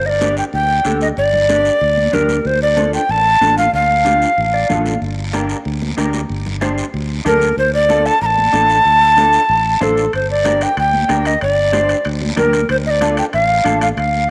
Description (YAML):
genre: latin, cumbia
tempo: 188 BPM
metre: 4/4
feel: straight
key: G minor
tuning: A4 = 440 Hz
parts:
  - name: breathy mellow tenor recorder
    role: melody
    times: 0.0-4.8, 7.3-14.3 s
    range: A4 to Bb5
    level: -16 LUFS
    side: equal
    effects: none
  - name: fingered electric bass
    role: bass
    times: 0.0-14.3 s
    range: G1 to D2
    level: -24 LUFS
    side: equal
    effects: none
  - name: congas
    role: percussion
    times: 0.1-14.3 s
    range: none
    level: -29 LUFS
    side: equal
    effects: none
  - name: electric guitar through a small old amp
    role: accompaniment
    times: 0.2-13.9 s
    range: D4 to F5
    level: -25 LUFS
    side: equal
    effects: analog chorus
  - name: guiro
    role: percussion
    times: 0.2-14.3 s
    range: none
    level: -33 LUFS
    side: equal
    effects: none
  - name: timbales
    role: percussion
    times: 10.1-14.1 s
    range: none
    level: -32 LUFS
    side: equal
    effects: none
room: moderate plate reverb, RT60 3.9 s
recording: none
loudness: -15 LUFS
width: mono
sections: 0.0-14.3 A section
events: clean electric guitar fill 4.4-5.0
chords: 0.0 Gm; 2.5 Dm; 5.0 Gm; 7.6 Dm; 10.1 Gm; 12.7 Dm